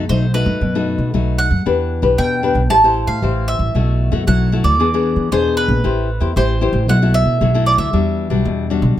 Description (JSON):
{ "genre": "samba and choro", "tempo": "115 BPM", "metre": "4/4", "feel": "straight", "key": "E minor", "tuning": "A4 = 439 Hz", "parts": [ { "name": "nylon-string guitar", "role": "accompaniment", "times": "0.0-9.0 s", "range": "B2 to C5", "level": "-19 LUFS", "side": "left 6 dB", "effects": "none" }, { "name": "upright bass", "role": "bass", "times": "0.0-9.0 s", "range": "A1 to E3", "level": "-17 LUFS", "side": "right 1 dB", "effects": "none" }, { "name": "bowl-back mandolin", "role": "melody", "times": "0.1-9.0 s", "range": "B4 to A5", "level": "-19 LUFS", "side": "right 2 dB", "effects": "none" } ], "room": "light reverb", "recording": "none", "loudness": "-14 LUFS", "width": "side -12 dB against mid", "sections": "0.0-9.0 A section", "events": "none", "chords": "0.0 B7; 1.7 Em7; 2.7 Am7; 3.8 B7sus4; 4.8 E7; 5.8 Am7; 6.9 B7sus4; 7.9 Em9" }